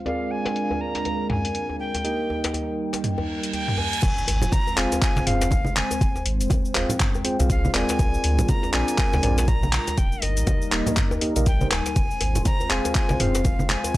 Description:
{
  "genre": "afro house",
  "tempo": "121 BPM",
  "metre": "4/4",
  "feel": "swing 59% on 16ths",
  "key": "F dorian",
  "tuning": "A4 = 440 Hz",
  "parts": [
    { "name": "dark analog pad", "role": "sustained chords", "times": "0.0-14.0 s", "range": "G3 to G5", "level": "-30 LUFS", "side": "equal", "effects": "chorus, sidechain pumping" },
    { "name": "mellow tine electric piano", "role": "stabs", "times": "0.0-13.4 s", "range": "Bb3 to G5", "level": "-28 LUFS", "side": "right 1 dB", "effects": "sidechain pumping, analog delay" },
    { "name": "breathy bright jazz flute", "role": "melody", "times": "0.1-14.0 s", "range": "Eb5 to Bb5", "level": "-30 LUFS", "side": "left 1 dB", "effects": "none" },
    { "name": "deep house drum kit", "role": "drums", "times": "0.1-14.0 s", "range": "cabasa, crash cymbal, handclaps, hi-hat, toms", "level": "-26 LUFS", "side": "equal", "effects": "overdrive" },
    { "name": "djembe", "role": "percussion", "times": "0.1-13.9 s", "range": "none", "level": "-33 LUFS", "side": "left 1 dB", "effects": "none" },
    { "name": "reverse cymbal and impact", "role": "sound effects", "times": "3.2-6.0 s", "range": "none", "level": "-32 LUFS", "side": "right 2 dB", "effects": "none" },
    { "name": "warm sub bass", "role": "bass", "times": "4.0-14.0 s", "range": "Eb1 to D2", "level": "-25 LUFS", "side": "equal", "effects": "sidechain pumping" },
    { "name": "electronic kick drum", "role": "drums", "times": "4.0-14.0 s", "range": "none", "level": "-22 LUFS", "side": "equal", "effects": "overdrive" },
    { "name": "congas", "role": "percussion", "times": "4.0-14.0 s", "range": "none", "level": "-28 LUFS", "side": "right 1 dB", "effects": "none" }
  ],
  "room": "little or no reverb",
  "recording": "dry, gritty hardware recording, low-pass filter",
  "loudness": "-20 LUFS",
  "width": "side -16 dB against mid",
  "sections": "0.0-4.0 A section; 4.0-14.0 B section",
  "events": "filter sweep on tine electric piano 0.0-4.0; filter sweep 0.0-4.0; reverse cymbal 3.2-4.0; drop 4.0-14.0; impact 4.0-6.0",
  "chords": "0.1 Bb7; 2.0 Eb; 4.0 Fm; 8.0 Bb7; 10.0 Eb; 12.0 Fm",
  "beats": "| 0.06 0.56 1.05 1.55 | 2.04 2.54 3.04 3.53 | 4.03 4.52 5.02 5.52 | 6.01 6.51 7.00 7.50 | 8.00 8.49 8.99 9.48 | 9.98 10.47 10.97 11.47 | 11.96 12.46 12.95 13.45 | 13.95"
}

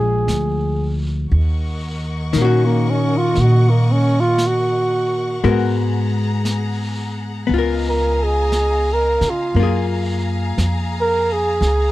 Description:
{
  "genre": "jazz ballad",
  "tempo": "58 BPM",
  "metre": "4/4",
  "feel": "swing 67% on 8ths",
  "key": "Eb minor",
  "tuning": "A4 = 441 Hz",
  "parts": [
    { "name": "trumpet with bucket mute", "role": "melody", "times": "0.0-11.9 s", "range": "Bb3 to Bb4", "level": "-18 LUFS", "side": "right 2 dB", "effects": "none" },
    { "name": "archtop guitar, miked and amplified", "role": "accompaniment", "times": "0.0-11.9 s", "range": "Eb3 to Bb4", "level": "-23 LUFS", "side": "left 6 dB", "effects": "none" },
    { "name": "upright bass", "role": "bass", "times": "0.0-11.9 s", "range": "Bb1 to Db3", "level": "-19 LUFS", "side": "right 1 dB", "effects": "none" },
    { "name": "jazz brush drum kit", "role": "drums", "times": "0.3-11.9 s", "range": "brushed snare drum, hi-hat, snare drum", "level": "-33 LUFS", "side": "right 1 dB", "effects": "none" },
    { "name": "warm symphonic string section", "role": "sustained chords", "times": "1.3-11.9 s", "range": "Ab4 to Db6", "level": "-29 LUFS", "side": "left 2 dB", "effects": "none" }
  ],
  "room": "little or no reverb",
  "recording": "dry, close 1970s-style studio recording",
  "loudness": "-16 LUFS",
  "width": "side -16 dB against mid",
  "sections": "0.0-1.3 A section; 1.3-11.9 B section",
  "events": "muted trumpet solo 1.3-11.9",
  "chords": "0.0 Bb7; 1.3 Ebm7; 5.4 Abm9; 7.5 Db13; 9.6 Gbmaj9",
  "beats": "0.30 | 1.33 2.36 3.39 4.41 | 5.44 6.47 7.50 8.53 | 9.55 10.58 11.61"
}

